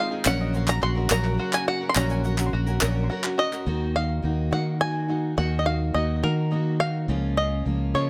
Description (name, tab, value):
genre	indie folk with a building arrangement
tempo	70 BPM (dotted quarters)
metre	6/8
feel	straight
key	unclear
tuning	A4 = 440 Hz
part	bluegrass banjo	melody	0.0-8.1 s	Bb4 to C6	-30 LUFS	equal	tape echo
part	picked steel-string acoustic guitar	accompaniment	0.0-8.1 s	Bb2 to Bb4	-33 LUFS	equal	none
part	mellow brass ensemble	sustained chords	0.0-3.6 s	C3 to Gb4	-39 LUFS	equal	none
part	open-back banjo	arpeggios	0.0-3.7 s	Db4 to Bb4	-34 LUFS	equal	none
part	group handclap	percussion	0.2-3.6 s	none	-29 LUFS	equal	none
part	fingered electric bass	bass	0.3-8.1 s	Bb1 to Eb3	-27 LUFS	equal	none
part	tube shaker	percussion	0.3-3.6 s	none	-39 LUFS	equal	none
part	fingerpicked steel-string acoustic guitar	accompaniment	3.7-8.1 s	Db3 to Gb4	-36 LUFS	equal	none
room	light reverb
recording	none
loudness	-25 LUFS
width	mono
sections	0.0-3.7 A section; 3.7-8.1 B section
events	none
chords	0.3 Gb/Bb; 3.7 Ebm; 7.1 Bbm/Db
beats	| 0.26 1.11 | 1.96 2.81 | 3.67 4.52 | 5.38 6.23 | 7.09 7.95